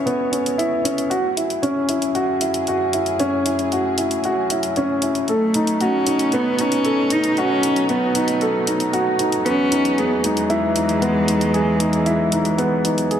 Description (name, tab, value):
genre	piano and strings electronica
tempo	115 BPM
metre	4/4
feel	straight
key	unclear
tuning	A4 = 442 Hz
part	muted studio string section	sustained chords	0.0-13.2 s	E2 to D#5	-27 LUFS	right 1 dB	none
part	dark grand piano	riff	0.0-13.2 s	B3 to A4	-19 LUFS	equal	digital delay
part	electronic hi-hat	drums	0.1-13.2 s	none	-27 LUFS	equal	small room reverb
part	dark cello	melody	5.3-13.1 s	G#3 to D#4	-21 LUFS	left 1 dB	digital delay
room	moderate concert hall reverb, RT60 2.0 s, studio reverb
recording	none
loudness	-17 LUFS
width	side -9 dB against mid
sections	0.0-13.2 A section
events	fade-in on string section 0.0-13.2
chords	0.0 C#m7; 1.1 F#m7; 5.3 B7; 9.5 Emaj7